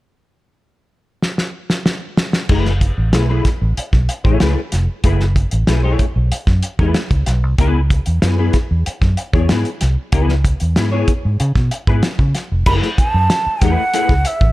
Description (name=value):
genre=funk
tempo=94 BPM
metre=4/4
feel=straight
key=F# minor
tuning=A4 = 440 Hz
part: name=cloth-damped thuddy drum kit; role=drums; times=1.2-14.5 s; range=crash cymbal, hi-hat, kick drum, snare drum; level=-17 LUFS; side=equal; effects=none
part: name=semi-hollow electric guitar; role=accompaniment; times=2.5-14.1 s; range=A3 to C#5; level=-22 LUFS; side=left 4 dB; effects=ensemble chorus
part: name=vintage muted fingered electric bass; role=bass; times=2.5-14.5 s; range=E#1 to C#3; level=-16 LUFS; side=equal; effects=none
part: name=breathy hollow jazz flute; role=melody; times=12.7-14.5 s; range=E5 to B5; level=-18 LUFS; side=right 2 dB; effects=slapback echo
room=small room ambience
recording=dark, warm production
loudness=-14 LUFS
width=side -18 dB against mid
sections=0.0-2.5 A section; 2.5-12.7 B section; 12.7-14.5 C section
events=drum fill 1.2-2.5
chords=0.0 N.C.; 2.5 F#m11; 7.6 C#m7; 12.7 F#m11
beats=0.59 1.22 1.86 | 2.50 3.13 3.77 4.41 | 5.04 5.68 6.31 6.95 | 7.58 8.22 8.86 9.49 | 10.13 10.76 11.40 12.03 | 12.67 13.30 13.94